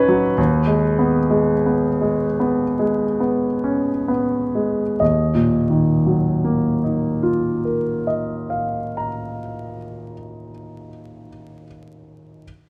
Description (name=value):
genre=classical, impressionist solo piano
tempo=32-51 BPM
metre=3/4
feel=rubato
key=Eb minor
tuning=A4 = 440 Hz
part: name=clear concert grand piano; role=solo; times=0.0-12.5 s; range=Eb2 to Bb5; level=-20 LUFS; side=equal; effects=none
room=moderate scoring stage reverb, RT60 1.7 s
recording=vinyl crackle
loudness=-20 LUFS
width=mono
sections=0.0-5.0 A section; 5.0-10.2 B section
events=slowing down 0.0-5.0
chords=0.4 Abm/Eb; 5.0 Ebmadd9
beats=| 0.37 1.65 3.20 | 4.99 6.74 8.45